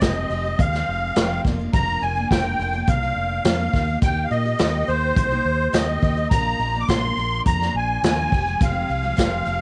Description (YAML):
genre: folk rock and heartland rock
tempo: 105 BPM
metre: 4/4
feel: straight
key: unclear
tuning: A4 = 439 Hz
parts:
  - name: musette accordion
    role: melody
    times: 0.0-9.6 s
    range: C5 to D6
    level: -26 LUFS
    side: equal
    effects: cassette tape, plate reverb, analog delay
  - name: picked twelve-string acoustic guitar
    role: accompaniment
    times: 0.0-9.6 s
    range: F2 to G4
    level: -32 LUFS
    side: equal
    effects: cassette tape, plate reverb
  - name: fingered electric bass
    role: bass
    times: 0.0-9.6 s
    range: F1 to Bb2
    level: -28 LUFS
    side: equal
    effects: none
  - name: unplugged drum kit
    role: drums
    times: 0.0-9.3 s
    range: hi-hat, kick drum, snare drum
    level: -23 LUFS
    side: equal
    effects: cassette tape
room: light reverb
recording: home recording on cassette, nothing above 10.8 kHz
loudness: -21 LUFS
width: mono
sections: 0.0-9.6 A section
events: none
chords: 0.0 Fmadd9; 1.5 Bb/F; 3.7 Eb; 6.3 Bb; 8.3 Fmadd9